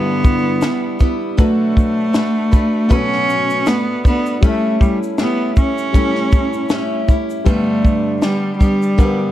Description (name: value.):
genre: acoustic pop.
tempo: 79 BPM.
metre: 4/4.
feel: swing 55% on 16ths.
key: B minor.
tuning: A4 = 442 Hz.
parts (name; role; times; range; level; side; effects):
rich cello; melody; 0.0-9.3 s; G3 to C#4; -18 LUFS; equal; none.
felt-muted upright piano; accompaniment; 0.0-9.3 s; G3 to B4; -26 LUFS; left 4 dB; none.
picked steel-string acoustic guitar; accompaniment; 0.0-9.3 s; G2 to B4; -20 LUFS; right 1 dB; none.
compact cocktail drum kit; drums; 0.2-9.2 s; kick drum, shaker, snare drum; -14 LUFS; equal; none.
room: small room ambience.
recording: dark, warm production.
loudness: -13 LUFS.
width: side -13 dB against mid.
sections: 0.0-9.3 A section.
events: none.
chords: 0.0 Em7/G; 1.4 Bm7; 4.4 A7; 7.5 G.